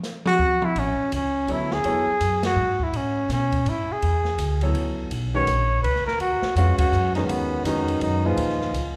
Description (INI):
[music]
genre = modal jazz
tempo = 165 BPM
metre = 3/4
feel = swing 63% on 8ths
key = A major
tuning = A4 = 438 Hz
[part]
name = open jazz drum kit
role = drums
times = 0.0-8.8 s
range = hi-hat, kick drum, ride cymbal, snare drum, toms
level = -33 LUFS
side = equal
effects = none
[part]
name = breathy trumpet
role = melody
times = 0.3-9.0 s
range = A#3 to C#5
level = -26 LUFS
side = equal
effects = none
[part]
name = upright bass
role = bass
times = 0.8-9.0 s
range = A1 to B2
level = -28 LUFS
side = equal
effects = none
[part]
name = clear baby grand piano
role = accompaniment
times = 1.5-2.1, 4.6-8.7 s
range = A#2 to F5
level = -30 LUFS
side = equal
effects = none
[sound]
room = moderate recital hall reverb, RT60 1.7 s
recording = recorded in a church or concert hall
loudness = -23 LUFS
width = mono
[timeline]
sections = 0.8-9.0 A section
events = band accent 2.4, 6.7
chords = 0.0 N.C.; 0.8 Amaj9; 5.1 Bmaj9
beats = 0.03 0.39 | 0.76 1.12 1.48 | 1.84 2.21 2.57 | 2.93 3.30 3.66 | 4.02 4.38 4.75 | 5.11 5.47 5.84 | 6.20 6.56 6.92 | 7.29 7.65 8.01 | 8.38 8.74